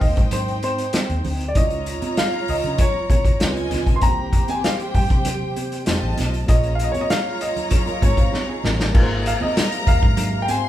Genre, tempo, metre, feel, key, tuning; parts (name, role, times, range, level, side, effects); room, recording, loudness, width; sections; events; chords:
lush 1970s-style soul; 97 BPM; 4/4; straight; A4 = 440 Hz
warm concert grand piano; melody; 0.0-10.7 s; C5 to C6; -25 LUFS; equal
warm studio string section; second line; 0.0-10.7 s; Eb4 to C6; -28 LUFS; right 1 dB
barky reed electric piano; accompaniment; 0.0-10.7 s; E3 to Db5; -33 LUFS; left 2 dB; overdrive, fast tremolo
vintage muted fingered electric bass; bass; 0.0-10.7 s; F1 to Db3; -26 LUFS; equal
vintage drum kit; drums; 0.0-10.6 s; crash cymbal, hi-hat, kick drum, snare drum; -20 LUFS; equal
congas; percussion; 0.2-10.6 s; -30 LUFS; right 2 dB
electric guitar through a small old amp; riff; 7.7-8.9 s; C4 to Db5; -31 LUFS; right 2 dB
warm French horn section; sustained chords; 8.9-10.7 s; C3 to F5; -34 LUFS; left 1 dB
moderate large studio reverb, RT60 0.8 s; band playing live in one room; -18 LUFS; side -13 dB against mid
0.0-8.9 A section; 8.9-10.7 B section
drum fill 8.3-8.9
0.0 Abmaj7; 1.6 Db; 3.4 Db9; 4.0 C7; 5.9 F7; 6.5 Bbm7; 8.9 Ab69